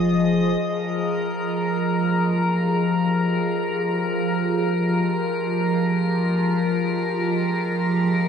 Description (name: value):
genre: ambient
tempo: free time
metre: none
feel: none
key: F minor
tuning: A4 = 440 Hz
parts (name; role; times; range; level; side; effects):
- evolving wavetable pad; sustained chords; 0.0-8.3 s; F3 to Eb5; -21 LUFS; equal; chorus, built-in reverb, phaser
- round analog bass; bass; 0.0-0.6 s; F1; -43 LUFS; equal; none
- drifting glass-harmonics texture; texture; 0.0-8.3 s; Bb4 to Eb6; -26 LUFS; left 3 dB; chorus, built-in reverb
room: wet cathedral reverb, RT60 5.2 s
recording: in a vast, echoing space, lossy compression artefacts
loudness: -20 LUFS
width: side -7 dB against mid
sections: 0.6-8.3 A section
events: none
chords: 0.0 Ab/F; 0.6 Fm7